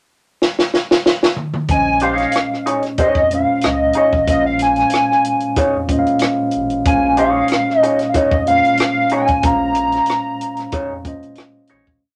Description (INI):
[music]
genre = R&B, neo-soul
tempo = 93 BPM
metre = 4/4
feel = swing 53% on 16ths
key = Bb minor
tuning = A4 = 440 Hz
[part]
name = compact cocktail drum kit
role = drums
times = 0.4-12.0 s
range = hi-hat, kick drum, rim click, snare drum, toms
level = -20 LUFS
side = equal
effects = none
[part]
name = hollow square lead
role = melody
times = 1.7-11.4 s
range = Eb5 to Bb5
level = -19 LUFS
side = equal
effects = chorus
[part]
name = mellow tine electric piano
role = accompaniment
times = 1.7-12.0 s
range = Bb2 to F5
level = -22 LUFS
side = equal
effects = none
[part]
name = round analog bass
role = bass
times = 1.7-12.0 s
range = A1 to F2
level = -31 LUFS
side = equal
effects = none
[part]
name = electric guitar through a small old amp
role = second line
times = 2.0-11.9 s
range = Eb4 to Db5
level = -22 LUFS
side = equal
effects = wah
[sound]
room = moderate small room reverb, RT60 0.5 s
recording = none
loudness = -16 LUFS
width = mono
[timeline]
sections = 0.0-1.7 pickup bar; 1.7-12.0 A section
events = drum fill 0.4-1.7; fade-out 9.4-12.0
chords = 0.0 N.C.; 1.7 Bbm11